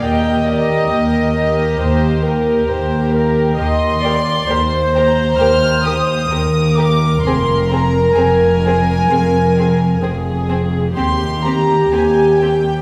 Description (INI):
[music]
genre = classical, slow romantic movement for string orchestra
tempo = 66 BPM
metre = 4/4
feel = uneven beats, rubato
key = Eb major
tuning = A4 = 442 Hz
[part]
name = warm studio violin section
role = melody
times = 0.0-12.8 s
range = D5 to F6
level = -23 LUFS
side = equal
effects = none
[part]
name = warm studio violin section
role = second line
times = 0.0-12.5 s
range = C4 to Bb4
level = -24 LUFS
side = equal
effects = none
[part]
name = rich studio viola section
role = accompaniment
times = 0.0-12.8 s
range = G4 to Eb5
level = -20 LUFS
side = equal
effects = none
[part]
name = dark studio cello section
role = bass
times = 0.0-12.8 s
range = Eb2 to F2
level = -22 LUFS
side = equal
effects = none
[part]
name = warm studio double bass section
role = bass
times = 0.0-12.8 s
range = F1 to Eb2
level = -22 LUFS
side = equal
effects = none
[sound]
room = wet scoring stage reverb, RT60 1.7 s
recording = heard from further back in the room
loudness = -15 LUFS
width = mono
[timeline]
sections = 0.0-12.8 A section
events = none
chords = 0.0 Eb; 7.2 Fm; 11.0 Cm/Eb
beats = | 0.03 0.92 1.80 2.69 | 3.58 4.49 5.41 6.30 | 7.23 8.15 9.10 10.03 | 10.96 11.91